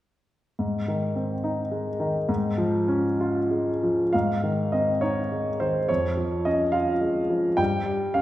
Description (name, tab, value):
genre	classical, romantic character piece for solo piano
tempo	69 BPM (dotted quarters)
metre	6/8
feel	rubato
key	Ab major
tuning	A4 = 440 Hz
part	clear grand piano	solo	0.6-8.2 s	F2 to G5	-22 LUFS	equal	none
room	wet recital hall reverb, RT60 1.5 s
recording	heard from further back in the room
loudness	-22 LUFS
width	side -14 dB against mid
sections	0.6-4.1 A section; 4.1-8.2 B section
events	none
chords	0.6 Ab; 2.3 Db/Ab; 4.1 Ab; 5.9 Db/F; 7.6 N.C.